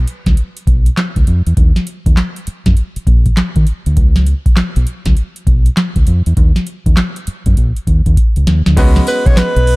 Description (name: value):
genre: R&B, new jack swing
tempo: 100 BPM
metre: 4/4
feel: swing 64% on 16ths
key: unclear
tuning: A4 = 440 Hz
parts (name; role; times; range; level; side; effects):
- deep dub fingered electric bass; bass; 0.0-9.8 s; A#1 to D#3; -12 LUFS; equal; none
- booming analog drum machine; drums; 0.1-9.8 s; crash cymbal, handclaps, hi-hat, kick drum, snare drum, tambourine; -12 LUFS; equal; none
- bright grand piano; accompaniment; 8.8-9.8 s; G#3 to B4; -18 LUFS; right 1 dB; none
- breathy alto saxophone; melody; 9.1-9.8 s; B4 to C#5; -15 LUFS; equal; none
room: little or no reverb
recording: dark, warm production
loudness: -10 LUFS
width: side -24 dB against mid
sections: 0.0-8.8 A section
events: drum fill 7.6-8.8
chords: 0.0 Bsus24; 1.6 D#m; 4.0 Bsus2; 6.4 N.C.; 8.8 C#7sus4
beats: 0.37 0.97 | 1.57 2.17 2.77 3.37 | 3.97 4.57 5.17 5.77 | 6.37 6.97 7.57 8.17 | 8.77 9.37